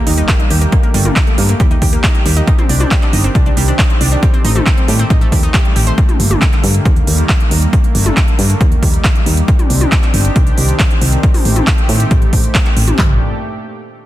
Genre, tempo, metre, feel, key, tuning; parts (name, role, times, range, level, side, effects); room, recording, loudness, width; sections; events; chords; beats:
uplifting trance; 137 BPM; 4/4; straight; G minor; A4 = 440 Hz
lush unison pad; sustained chords; 0.0-13.2 s; Bb2 to G4; -21 LUFS; equal; chorus, vintage 12-bit sampler grit, sidechain pumping
impact; sound effects; 0.2-0.7 s; barely audible
analog pluck; arpeggios; 0.1-5.9 s; G3 to C5; -22 LUFS; right 2 dB; chorus, sidechain pumping, dub echo
solid FM bass; bass; 0.1-13.2 s; G1 to A2; -14 LUFS; equal; sidechain pumping
big-room dance drum kit; drums; 0.1-13.0 s; handclaps, hi-hat, toms; -18 LUFS; right 1 dB; overdrive, sidechain pumping on hats, sidechain pumping on cymbals, sidechain pumping on toms
big-room dance drum kit; drums; 0.3-13.1 s; handclaps, kick drum, toms; -12 LUFS; equal; overdrive
digital ambience; dense, heavily limited modern master; -10 LUFS; side -14 dB against mid
0.0-13.0 A section; 13.0-14.1 B section
impact 0.0-0.7
0.0 Eb; 0.7 Gmadd9; 1.6 Eb; 2.5 Cmadd9; 4.2 Am7b5; 6.0 Gmadd9; 6.9 Eb; 7.7 Gmadd9; 8.6 Eb; 9.5 Cmadd9; 11.2 Am7b5; 13.0 Gmadd9
0.28 | 0.72 1.16 1.60 2.04 | 2.48 2.91 3.35 3.79 | 4.23 4.67 5.10 5.54 | 5.98 6.42 6.86 7.29 | 7.73 8.17 8.61 9.04 | 9.48 9.92 10.36 10.80 | 11.23 11.67 12.11 12.55 | 12.99